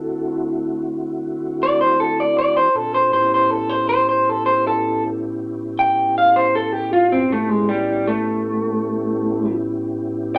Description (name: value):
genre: blues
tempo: 53 BPM (dotted quarters)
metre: 12/8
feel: straight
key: unclear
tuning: A4 = 440 Hz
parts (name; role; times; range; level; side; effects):
- electric guitar through a small old amp; melody; 0.0-10.4 s; G3 to G5; -19 LUFS; equal; none
- mellow tonewheel organ; sustained chords; 0.0-10.4 s; A2 to G#4; -26 LUFS; equal; slow rotary speaker, chorus vibrato
room: wet studio reverb, RT60 0.8 s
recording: none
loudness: -19 LUFS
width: mono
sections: 0.0-10.4 A section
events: clean electric guitar solo 0.0-10.4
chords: 0.0 D7; 2.7 A7